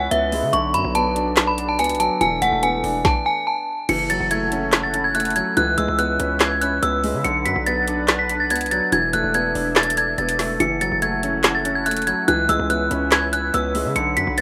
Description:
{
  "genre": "hip hop, trap",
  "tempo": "143 BPM",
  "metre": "4/4",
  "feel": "half-time",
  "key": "F# minor",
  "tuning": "A4 = 441 Hz",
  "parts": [
    { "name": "metallic FM bell", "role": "melody", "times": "0.0-14.4 s", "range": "E5 to C#7", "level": "-22 LUFS", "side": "equal", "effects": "chorus, low-pass filter" },
    { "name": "warm concert grand piano", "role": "accompaniment", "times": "0.0-14.4 s", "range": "D3 to D4", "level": "-27 LUFS", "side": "equal", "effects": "low-pass filter" },
    { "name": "sweeping resonant pad", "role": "sustained chords", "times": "0.0-14.4 s", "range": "E3 to F#5", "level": "-34 LUFS", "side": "equal", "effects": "chorus" },
    { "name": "distorted 808-style bass", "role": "bass", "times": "0.0-14.4 s", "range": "E1 to C#3", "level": "-30 LUFS", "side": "equal", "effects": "distortion" },
    { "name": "trap drum kit", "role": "drums", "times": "0.1-14.4 s", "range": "crash cymbal, handclaps, hi-hat, kick drum, snare drum", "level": "-24 LUFS", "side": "equal", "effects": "none" }
  ],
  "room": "little or no reverb",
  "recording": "rough home demo mix, vinyl crackle",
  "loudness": "-20 LUFS",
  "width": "mono",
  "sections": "0.0-3.9 A section; 3.9-14.4 B section",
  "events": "none",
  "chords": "0.0 C#m7; 0.5 Bm; 2.2 E7sus4; 3.9 F#m7; 5.6 C#m7; 7.2 Bm; 8.9 E7sus4; 10.6 F#m7; 12.3 C#m7"
}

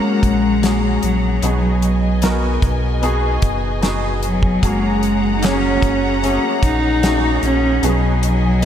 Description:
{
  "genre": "pop ballad",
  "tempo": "75 BPM",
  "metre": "4/4",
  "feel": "straight",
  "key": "F# major",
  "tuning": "A4 = 438 Hz",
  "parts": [
    { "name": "warm cello", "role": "melody", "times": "0.0-8.7 s", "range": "F#3 to D#4", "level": "-18 LUFS", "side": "left 1 dB", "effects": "diffuse ambient delay" },
    { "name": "clear baby grand piano", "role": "accompaniment", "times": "0.0-8.7 s", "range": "B2 to A#4", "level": "-23 LUFS", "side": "equal", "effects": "ensemble chorus" },
    { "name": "warm studio string section", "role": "sustained chords", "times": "0.0-8.7 s", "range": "G#4 to A#5", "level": "-25 LUFS", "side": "left 3 dB", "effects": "none" },
    { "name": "picked steel-string acoustic guitar", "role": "arpeggios", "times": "0.0-8.7 s", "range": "B2 to G#4", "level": "-29 LUFS", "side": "left 2 dB", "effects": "none" },
    { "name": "sub bass with octave", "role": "bass", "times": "0.2-8.7 s", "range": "F#1 to B1", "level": "-20 LUFS", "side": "equal", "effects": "none" },
    { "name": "damped 70s drum kit", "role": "drums", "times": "0.2-8.7 s", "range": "hi-hat, kick drum, snare drum", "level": "-20 LUFS", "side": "equal", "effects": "none" }
  ],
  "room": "moderate lush hall reverb, RT60 3.0 s",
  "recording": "dreamy mix soaked in reverb",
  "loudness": "-14 LUFS",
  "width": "side -9 dB against mid",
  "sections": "0.0-8.7 A section",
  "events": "none",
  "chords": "0.0 F#add9; 1.4 B6; 4.6 F#add9; 7.8 B6"
}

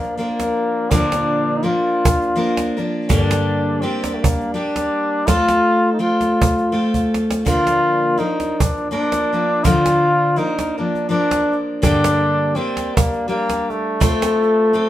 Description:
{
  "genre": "acoustic folk duo or small band",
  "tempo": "82 BPM",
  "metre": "3/4",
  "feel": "swing 57% on 8ths",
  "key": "unclear",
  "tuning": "A4 = 440 Hz",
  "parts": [
    { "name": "trombone with straight mute", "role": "melody", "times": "0.0-14.9 s", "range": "A3 to F4", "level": "-19 LUFS", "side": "left 1 dB", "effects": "none" },
    { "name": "picked steel-string acoustic guitar", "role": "accompaniment", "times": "0.0-14.9 s", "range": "G2 to Bb4", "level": "-20 LUFS", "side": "left 1 dB", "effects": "none" },
    { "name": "cajon", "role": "percussion", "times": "0.0-14.5 s", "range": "none", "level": "-20 LUFS", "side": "right 2 dB", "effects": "none" }
  ],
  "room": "wet studio reverb, RT60 0.6 s",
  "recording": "band playing live in one room",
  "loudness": "-16 LUFS",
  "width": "side -13 dB against mid",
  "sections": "0.0-14.9 A section",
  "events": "drum fill 6.9-7.5",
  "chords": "0.0 Bb; 3.1 Gm; 5.3 F/A; 7.5 Bb; 11.8 Gm; 14.0 F/A"
}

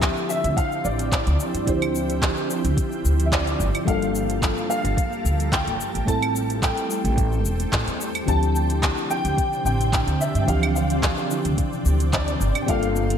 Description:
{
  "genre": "sunset chillout",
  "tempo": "109 BPM",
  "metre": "4/4",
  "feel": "straight",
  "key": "D minor",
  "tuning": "A4 = 440 Hz",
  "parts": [
    { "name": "dark concert grand piano", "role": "melody", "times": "0.0-13.2 s", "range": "C5 to A5", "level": "-28 LUFS", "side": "equal", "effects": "ensemble chorus, ping-pong delay" },
    { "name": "mellow FM electric piano", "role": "accompaniment", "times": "0.0-13.2 s", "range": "E3 to A4", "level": "-28 LUFS", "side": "moving between left 8 dB and right 4 dB", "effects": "chorus, auto-pan" },
    { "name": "shimmering ambient pad", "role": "sustained chords", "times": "0.0-13.2 s", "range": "C3 to A4", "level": "-29 LUFS", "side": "right 2 dB", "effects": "chorus, built-in reverb" },
    { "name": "upright bass", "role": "bass", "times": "0.0-13.2 s", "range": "E1 to A2", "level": "-24 LUFS", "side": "equal", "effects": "none" },
    { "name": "electronic kick drum", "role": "drums", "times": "0.0-12.8 s", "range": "none", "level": "-25 LUFS", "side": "equal", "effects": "overdrive" },
    { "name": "smooth R&B drum kit", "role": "drums", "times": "0.0-13.2 s", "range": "cabasa, claves, handclaps, hi-hat", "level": "-28 LUFS", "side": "equal", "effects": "overdrive, gated reverb" }
  ],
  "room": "moderate lush hall reverb, RT60 1.8 s, digital ambience",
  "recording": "bright 1980s-style digital production",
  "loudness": "-20 LUFS",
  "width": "side -8 dB against mid",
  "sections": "0.0-13.2 A section",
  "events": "none",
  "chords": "0.0 Dm11; 3.6 Gm9; 5.8 Am7; 8.3 Dm11; 12.4 Gm9"
}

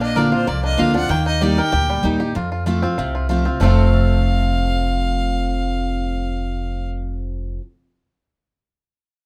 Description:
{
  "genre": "bluegrass",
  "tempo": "192 BPM",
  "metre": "4/4",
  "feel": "straight",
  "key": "F mixolydian",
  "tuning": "A4 = 442 Hz",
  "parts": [
    { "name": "bluegrass banjo", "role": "melody", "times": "0.0-7.6 s", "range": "G3 to Bb4", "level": "-27 LUFS", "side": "equal", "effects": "none" },
    { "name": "clear fiddle", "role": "melody", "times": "0.0-6.9 s", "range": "C5 to G5", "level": "-27 LUFS", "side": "equal", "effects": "none" },
    { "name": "picked steel-string acoustic guitar", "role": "accompaniment", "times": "0.0-7.6 s", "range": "F2 to G4", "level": "-24 LUFS", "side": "equal", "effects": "none" },
    { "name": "upright bass", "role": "bass", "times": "0.0-7.6 s", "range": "F1 to F2", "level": "-23 LUFS", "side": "equal", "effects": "none" }
  ],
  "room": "light reverb",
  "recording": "none",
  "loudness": "-19 LUFS",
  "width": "mono",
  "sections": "0.0-3.6 A section; 3.6-6.1 B section",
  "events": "none",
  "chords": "0.0 Bbadd9; 1.1 Eb; 2.4 F"
}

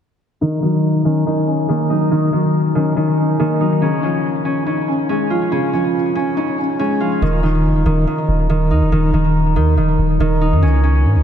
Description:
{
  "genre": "hip hop",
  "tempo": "141 BPM",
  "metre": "4/4",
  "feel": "half-time",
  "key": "Eb minor",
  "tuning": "A4 = 440 Hz",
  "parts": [
    { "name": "felt-muted upright piano", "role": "accompaniment", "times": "0.4-7.2 s", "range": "Db3 to Eb4", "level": "-19 LUFS", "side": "left 1 dB", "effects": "wide subtle chorus, low-pass filter" },
    { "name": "concert harp", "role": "arpeggios", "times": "0.4-11.2 s", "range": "Eb3 to F4", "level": "-17 LUFS", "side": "equal", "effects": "low-pass filter, ping-pong delay" },
    { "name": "long sustained 808-style bass", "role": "bass", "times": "7.2-11.2 s", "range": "Eb1 to Ab2", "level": "-15 LUFS", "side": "equal", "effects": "none" }
  ],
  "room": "moderate lush hall reverb, RT60 2.8 s",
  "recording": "dreamy mix soaked in reverb",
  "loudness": "-14 LUFS",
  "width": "side -9 dB against mid",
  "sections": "0.4-7.2 A section; 7.2-11.2 B section",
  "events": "filter sweep 0.4-7.2",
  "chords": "0.4 Ebm7; 3.8 Dbadd9; 7.2 N.C.; 10.6 Db5"
}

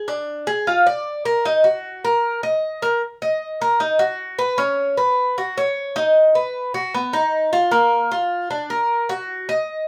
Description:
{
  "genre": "latin",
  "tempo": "153 BPM",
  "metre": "4/4",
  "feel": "straight",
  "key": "Eb harmonic minor, Eb minor from 3.0 s",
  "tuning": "A4 = 443 Hz",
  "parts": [
    { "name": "Cuban tres", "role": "solo", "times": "0.0-9.9 s", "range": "Bb3 to Eb5", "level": "-20 LUFS", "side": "equal", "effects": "none" }
  ],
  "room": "wet studio ambience, RT60 0.5 s",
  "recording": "band playing live in one room",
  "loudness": "-20 LUFS",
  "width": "mono",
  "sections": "0.0-3.0 A section; 3.0-9.9 B section",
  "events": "none",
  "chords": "none"
}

